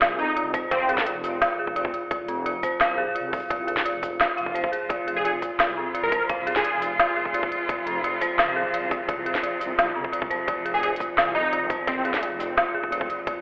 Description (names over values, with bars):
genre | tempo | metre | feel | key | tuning
half-time drum and bass | 172 BPM | 4/4 | half-time | F minor | A4 = 439 Hz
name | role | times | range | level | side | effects
dark detuned synth bell | arpeggios | 0.0-13.4 s | C4 to F5 | -26 LUFS | equal | chorus, tape echo
deep soft wobble bass | bass | 0.0-13.4 s | F1 to C2 | -37 LUFS | equal | chorus
organic electronic drum kit | drums | 0.0-13.3 s | hi-hat, shaker, snare drum | -23 LUFS | equal | studio reverb
plucky unison lead | melody | 0.2-1.1, 5.2-6.8, 10.7-12.2 s | C4 to Bb4 | -27 LUFS | equal | ensemble chorus, tape echo
electronic kick drum | drums | 0.5-13.3 s | none | -29 LUFS | equal | overdrive, studio reverb
swell | sound effects | 4.4-4.9 s | none | -32 LUFS | equal | none
rich chamber cello section | sustained chords | 4.9-13.4 s | C3 to F4 | -31 LUFS | equal | sidechain pumping
room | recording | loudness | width
moderate echo chamber reverb, RT60 1.4 s | played on a big sound system in a bare room, large studio reverb, telephone sound | -22 LUFS | side -28 dB against mid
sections
0.0-13.4 A section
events
swell 4.4-4.9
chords
0.0 F5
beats
0.02 0.36 | 0.71 1.06 1.41 1.76 | 2.11 2.46 2.81 3.16 | 3.50 3.85 4.20 4.55 | 4.90 5.25 5.60 5.95 | 6.29 6.64 6.99 7.34 | 7.69 8.04 8.39 8.74 | 9.09 9.44 9.78 10.13 | 10.48 10.83 11.18 11.53 | 11.88 12.23 12.57 12.92 | 13.27